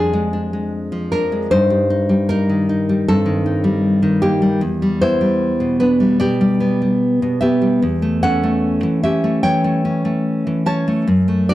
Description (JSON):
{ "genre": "romantic piece for solo classical guitar", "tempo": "76 BPM", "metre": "4/4", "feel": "rubato", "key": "unclear", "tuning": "A4 = 440 Hz", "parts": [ { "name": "nylon-string guitar", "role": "solo", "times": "0.0-11.5 s", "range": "E2 to A5", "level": "-15 LUFS", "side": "equal", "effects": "none" } ], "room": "moderate recital hall reverb, RT60 1.6 s", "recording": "dark, warm production", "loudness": "-15 LUFS", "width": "side -15 dB against mid", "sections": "0.0-11.5 A section", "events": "none", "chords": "0.0 Ddim/F; 1.5 Eb/G; 4.6 Em; 7.8 A7/E" }